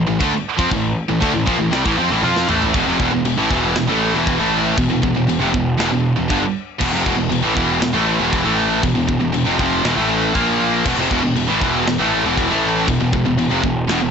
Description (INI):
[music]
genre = heavy metal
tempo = 118 BPM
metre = 4/4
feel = straight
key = unclear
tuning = A4 = 440 Hz
[part]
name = distorted electric guitar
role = riff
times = 0.0-14.1 s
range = E2 to F4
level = -21 LUFS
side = left 10 dB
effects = overdrive
[part]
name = high-gain distorted guitar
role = riff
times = 0.0-14.1 s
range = E2 to F4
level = -20 LUFS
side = right 9 dB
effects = distortion
[part]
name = fuzz picked electric bass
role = bass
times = 0.0-14.1 s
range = E1 to F2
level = -23 LUFS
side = equal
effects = overdrive
[part]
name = heavy high-gain guitar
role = riff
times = 0.1-14.1 s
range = E2 to F4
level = -22 LUFS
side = equal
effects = distortion
[part]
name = tight metal drum kit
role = drums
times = 0.2-14.0 s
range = china cymbal, crash cymbal, kick drum, snare drum, toms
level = -24 LUFS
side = left 1 dB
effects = soft clipping on kick, soft clipping on snare
[sound]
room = small room ambience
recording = blown-out, overdriven recording, overdrive, nothing above 7.9 kHz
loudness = -15 LUFS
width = side -6 dB against mid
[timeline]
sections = 0.0-2.7 A section; 2.7-14.1 B section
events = drum fill 2.2-2.7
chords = 0.0 A5; 2.7 E5; 10.3 A#5; 10.9 E5